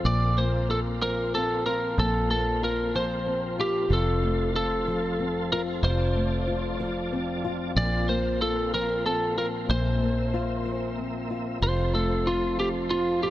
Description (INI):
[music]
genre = six-eight pop ballad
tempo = 62 BPM (dotted quarters)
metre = 6/8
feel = straight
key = unclear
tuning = A4 = 440 Hz
[part]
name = nylon-string guitar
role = accompaniment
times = 0.0-13.3 s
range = F2 to F4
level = -29 LUFS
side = left 3 dB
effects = none
[part]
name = tonewheel organ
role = sustained chords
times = 0.0-13.3 s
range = F3 to A5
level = -35 LUFS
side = right 1 dB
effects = chorus vibrato, fast rotary speaker
[part]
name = fingered electric bass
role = bass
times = 0.0-13.3 s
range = F1 to Bb1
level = -28 LUFS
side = equal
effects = none
[part]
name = lightly driven lead guitar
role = melody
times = 0.1-13.3 s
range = F4 to D5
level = -28 LUFS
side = right 1 dB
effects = none
[part]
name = mellow French horn section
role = second line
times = 11.6-13.3 s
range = F4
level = -31 LUFS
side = right 2 dB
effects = none
[sound]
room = light reverb, studio ambience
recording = none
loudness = -24 LUFS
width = side -14 dB against mid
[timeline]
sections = 0.0-13.3 A section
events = none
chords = 0.0 Bbsus2; 3.9 F; 7.8 Bbsus2; 11.6 F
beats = | 0.05 1.01 | 1.97 2.94 | 3.90 4.87 | 5.83 6.79 | 7.76 8.73 | 9.69 10.66 | 11.62 12.59